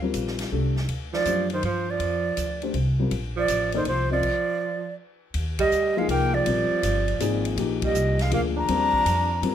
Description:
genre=modal jazz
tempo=162 BPM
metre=3/4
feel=swing 66% on 8ths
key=Bb major, Eb major from 5.3 s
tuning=A4 = 440 Hz
part: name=dark baby grand piano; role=accompaniment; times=0.0-9.5 s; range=F3 to Eb5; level=-28 LUFS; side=left 5 dB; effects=none
part: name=upright bass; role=bass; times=0.0-9.5 s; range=G1 to Ab2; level=-27 LUFS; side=equal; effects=none
part: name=swinging big-band drum kit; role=drums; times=0.1-9.5 s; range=crash cymbal, hi-hat, kick drum, ride cymbal, snare drum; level=-35 LUFS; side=left 2 dB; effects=none
part: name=breathy concert flute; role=melody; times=1.1-9.5 s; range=C5 to Bb5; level=-25 LUFS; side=equal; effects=none
part: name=breathy tenor saxophone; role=second line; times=1.1-9.5 s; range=Eb3 to D4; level=-28 LUFS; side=right 6 dB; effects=none
room=moderate studio reverb, RT60 0.8 s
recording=none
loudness=-22 LUFS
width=side -10 dB against mid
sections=0.0-5.3 A section; 5.3-9.5 B section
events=stop 4.2-5.3; band accent 5.5, 7.8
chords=0.0 Bbmaj9; 5.3 Ebmaj9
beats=0.14 0.52 | 0.89 1.26 1.63 | 2.00 2.38 2.75 | 3.12 3.49 3.86 | 4.24 4.61 4.98 | 5.35 5.72 6.09 | 6.46 6.83 7.21 | 7.58 7.95 8.32 | 8.69 9.06 9.43

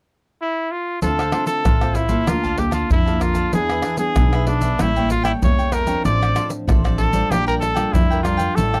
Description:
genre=samba and choro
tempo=96 BPM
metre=4/4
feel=straight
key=D minor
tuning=A4 = 440 Hz
part: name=clear trumpet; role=melody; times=0.4-8.8 s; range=D4 to D5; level=-24 LUFS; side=equal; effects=none
part: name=cavaquinho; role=accompaniment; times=1.0-8.8 s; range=D4 to A5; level=-31 LUFS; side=equal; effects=none
part: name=nylon-string guitar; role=accompaniment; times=1.0-8.8 s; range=A2 to A4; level=-28 LUFS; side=equal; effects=none
part: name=upright bass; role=bass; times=1.0-8.8 s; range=A1 to F2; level=-25 LUFS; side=equal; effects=none
part: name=tube shaker, surdo, pandeiro and tamborim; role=percussion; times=1.0-8.8 s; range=none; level=-23 LUFS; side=equal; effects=none
room=light reverb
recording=dry, close 1970s-style studio recording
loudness=-19 LUFS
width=mono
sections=0.0-1.0 A section; 1.0-8.8 B section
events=none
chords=0.0 N.C.; 1.0 Dm7; 2.3 Bbmaj7/D; 3.5 E7; 4.8 A7b9; 6.1 Dm7/A; 7.3 Bb6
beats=0.40 | 1.03 1.66 2.29 2.91 | 3.54 4.17 4.80 5.43 | 6.05 6.68 7.31 7.94 | 8.57

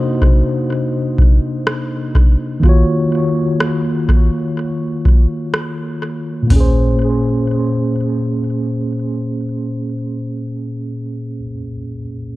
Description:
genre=contemporary R&B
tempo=62 BPM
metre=4/4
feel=swing 54% on 16ths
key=Bb minor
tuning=A4 = 440 Hz
part: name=mellow tine electric piano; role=accompaniment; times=0.0-12.4 s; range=Bb2 to Eb5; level=-18 LUFS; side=equal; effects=medium stereo tremolo, low-pass filter, tape echo
part: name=booming analog drum machine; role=drums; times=0.2-6.7 s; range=hi-hat, kick drum, rim click, toms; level=-13 LUFS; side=equal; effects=none
room=light reverb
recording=echo-heavy mix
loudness=-14 LUFS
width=side -18 dB against mid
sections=0.0-6.5 A section; 6.5-10.4 B section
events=filter sweep on tine electric piano 0.0-6.5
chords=0.0 Cm9; 2.6 Ebm9; 6.5 Bbm9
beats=0.70 1.67 | 2.63 3.60 4.57 5.54 | 6.51 7.47 8.44 9.41

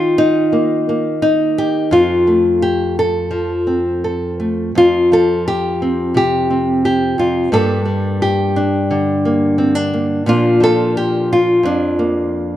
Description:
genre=folk, solo fingerstyle acoustic guitar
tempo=87 BPM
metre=4/4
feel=straight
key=unclear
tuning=A4 = 441 Hz
part: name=nylon-string guitar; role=solo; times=0.0-12.6 s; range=F2 to A4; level=-13 LUFS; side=equal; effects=none
room=moderate scoring stage reverb, RT60 2.0 s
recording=dark, warm production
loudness=-13 LUFS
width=side -12 dB against mid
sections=0.0-4.8 A section; 4.8-12.6 B section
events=none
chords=0.0 Eb; 1.9 F; 7.5 Gmadd9; 10.3 Bb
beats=0.54 1.23 | 1.92 2.62 3.32 4.04 | 4.75 5.46 6.15 6.84 | 7.53 8.22 8.90 9.58 | 10.26 10.95 11.63 12.32

